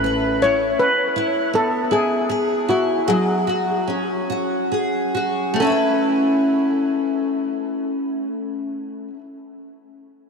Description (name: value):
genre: six-eight pop ballad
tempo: 45-54 BPM (dotted quarters)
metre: 6/8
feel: straight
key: A major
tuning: A4 = 440 Hz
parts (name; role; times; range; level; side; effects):
- steel pan; melody; 0.0-9.1 s; F#4 to C#5; -21 LUFS; left 1 dB; tape echo
- picked steel-string acoustic guitar; accompaniment; 0.0-9.2 s; F#3 to B4; -20 LUFS; equal; double-tracked left and right
- vintage muted fingered electric bass; bass; 0.0-0.7 s; A1; -31 LUFS; equal; none
room: wet huge ambient reverb, RT60 6.2 s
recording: dreamy mix soaked in reverb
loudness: -18 LUFS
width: side -5 dB against mid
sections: 0.0-5.6 A section; 5.6-8.2 B section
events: slowing down 0.8-5.6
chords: 0.0 Aadd9; 0.8 E; 3.1 F#sus2; 5.6 Aadd9